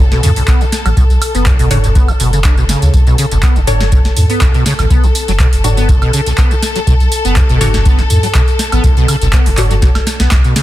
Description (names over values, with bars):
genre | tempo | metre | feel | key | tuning
acid house | 122 BPM | 4/4 | swing 53% on 16ths | unclear | A4 = 443 Hz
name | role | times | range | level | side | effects
clear symphonic string section | sustained chords | 0.0-10.6 s | A4 | -21 LUFS | left 4 dB | sidechain pumping
liquid acid bass | riff | 0.0-10.6 s | B1 to D4 | -17 LUFS | equal | ensemble chorus, sidechain pumping, digital delay
warm sub bass | bass | 0.0-10.3 s | F#1 to E2 | -15 LUFS | equal | tube saturation, sidechain pumping
booming analog drum machine | drums | 0.1-10.6 s | handclaps, hi-hat, snare drum, tambourine, toms, woodblock | -18 LUFS | right 1 dB | soft clipping on snare
electronic kick drum | drums | 0.5-10.4 s | none | -11 LUFS | equal | none
filtered dub chord stab | stabs | 1.7-9.7 s | D4 to C#5 | -22 LUFS | left 3 dB | phaser, wide subtle chorus, digital delay
room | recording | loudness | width
digital ambience | dense, heavily limited modern master | -9 LUFS | side -14 dB against mid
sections
0.0-10.6 A section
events
drum fill 9.8-10.6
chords
0.0 B7(no3)